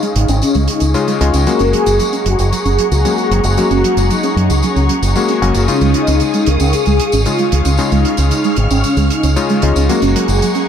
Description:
italo disco; 114 BPM; 4/4; straight; A4 = 440 Hz
mellow synth brass; melody; 0.0-10.7 s; Db4 to Bb4; -18 LUFS; equal; chorus, cassette tape, tape echo
clear studio string section; sustained chords; 0.0-10.7 s; Ab4 to F6; -22 LUFS; left 2 dB; low-pass filter
soft round pluck; arpeggios; 0.0-10.7 s; Db3 to Gb4; -20 LUFS; right 4 dB; ensemble chorus, tape echo
warm electric grand piano; stabs; 0.0-10.7 s; Db3 to Gb4; -19 LUFS; left 5 dB; tape echo
tambourine and hi-hat; drums; 0.0-10.7 s; -24 LUFS; right 1 dB
fingered electric bass with an envelope filter; bass; 0.2-10.4 s; Gb1 to Gb2; -15 LUFS; equal
light reverb, small room ambience; dark, warm production; -11 LUFS; side -8 dB against mid
0.0-10.7 A section
filter sweep on synth arpeggio sound 0.0-10.7; filter sweep on string section 0.0-10.7
0.0 Dbadd9; 1.5 Gbadd9; 5.7 Dbadd9; 9.9 Gbadd9

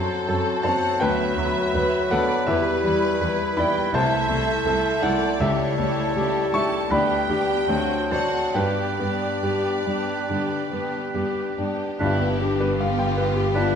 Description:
classical, romantic movement for piano and orchestra; 67-86 BPM; 4/4; rubato; G major; A4 = 440 Hz
clear concert grand piano; melody; 0.0-13.8 s; C2 to C#6; -24 LUFS; left 1 dB
rich studio violin section; melody; 0.0-13.8 s; E4 to B4; -33 LUFS; left 3 dB
mellow hollow concert flute; second line; 0.0-13.8 s; F5 to B5; -33 LUFS; left 2 dB
rich studio violin section; second line; 0.0-13.8 s; D4 to A5; -30 LUFS; equal
warm clarinet; second line; 0.0-13.8 s; D4 to F#4; -32 LUFS; left 2 dB
warm oboe; second line; 0.0-13.8 s; A4 to C5; -31 LUFS; right 3 dB
mellow bassoon; accompaniment; 0.0-13.8 s; F#3 to A3; -30 LUFS; equal
rich studio viola section; accompaniment; 0.0-13.8 s; F#3 to E4; -33 LUFS; right 1 dB
rich studio cello section; bass; 0.3-13.8 s; C2 to G2; -30 LUFS; right 2 dB
mellow French horn section; sustained chords; 12.0-13.8 s; B3 to F4; -30 LUFS; left 5 dB
warm studio double bass section; bass; 12.0-13.8 s; G1; -30 LUFS; right 4 dB
timpani; percussion; 12.0-13.1 s; G2; -33 LUFS; equal
wet scoring stage reverb, RT60 1.9 s; minimal, uncompressed stereo recording; -20 LUFS; side -7 dB against mid
0.0-12.0 A section; 12.0-13.8 B section
0.0 F#dim; 1.0 Bm/D; 2.5 Em; 3.9 Am/C; 5.4 A7/C#; 6.9 G/D; 7.7 D7; 8.6 G; 12.0 G7

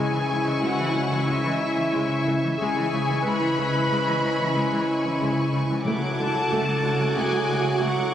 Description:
cinematic, suspense film score; 92 BPM; 5/4; straight; C# phrygian; A4 = 439 Hz
rich chamber violin section; melody; 0.0-8.1 s; E5 to B5; -29 LUFS; left 2 dB
mellow clarinet; second line; 0.0-8.1 s; E4 to B4; -30 LUFS; equal
rich studio violin section; second line; 0.0-8.1 s; F#5 to D6; -31 LUFS; left 3 dB
rich studio viola section; accompaniment; 0.0-8.1 s; C#3 to F#4; -30 LUFS; right 2 dB
bright trombone section; sustained chords; 0.0-8.1 s; G#2 to G#3; -34 LUFS; right 2 dB
mellow French horn section; sustained chords; 0.0-8.1 s; A3 to F#4; -30 LUFS; equal
concert harp; riff; 0.0-8.1 s; C#3 to C#4; -28 LUFS; left 1 dB
clear studio double bass section; bass; 0.0-7.9 s; C#2; -38 LUFS; right 3 dB
rich chamber cello section; bass; 0.0-8.0 s; C#2; -34 LUFS; equal
impact; sound effects; 0.0-2.6 s; barely audible
clear chamber violin section; texture; 0.0-8.1 s; E6 to B6; -37 LUFS; left 2 dB
timpani; percussion; 5.8-6.8 s; C#3; -35 LUFS; equal
moderate concert hall reverb, RT60 2.3 s; recorded on a phone in the room, studio reverb; -21 LUFS; side -10 dB against mid
0.0-8.1 A section
impact 0.0-2.6
0.0 C#m7; 5.8 D/C#

